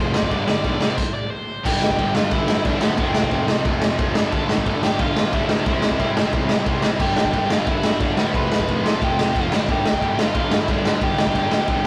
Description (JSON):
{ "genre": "punk rock", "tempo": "179 BPM", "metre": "4/4", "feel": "straight", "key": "G mixolydian", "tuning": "A4 = 440 Hz", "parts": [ { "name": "biting overdriven guitar", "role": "melody", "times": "0.0-11.9 s", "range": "B3 to D5", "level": "-28 LUFS", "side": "equal", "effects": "none" }, { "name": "high-gain distorted guitar", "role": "riff", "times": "0.0-11.9 s", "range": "F2 to C4", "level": "-30 LUFS", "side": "equal", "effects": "distortion" }, { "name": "sludgy distorted guitar", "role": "riff", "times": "0.0-11.9 s", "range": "F2 to E4", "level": "-32 LUFS", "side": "equal", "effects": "none" }, { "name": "fuzz picked electric bass", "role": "bass", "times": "0.0-11.9 s", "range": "F1 to D2", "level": "-29 LUFS", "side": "equal", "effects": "overdrive" }, { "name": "raw garage drum kit", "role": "drums", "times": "0.1-11.8 s", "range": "crash cymbal, kick drum, ride cymbal, snare drum", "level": "-23 LUFS", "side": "equal", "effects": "none" } ], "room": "light reverb", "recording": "rough rehearsal-room recording, warm saturation", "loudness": "-20 LUFS", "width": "mono", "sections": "0.0-1.7 A section; 1.7-11.9 B section", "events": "overdriven electric guitar solo 0.0-1.7; stop 1.0-1.7", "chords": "0.3 G; 0.8 C5; 1.7 G; 3.0 F; 4.2 G; 5.7 C; 7.0 G; 8.3 F; 9.5 G" }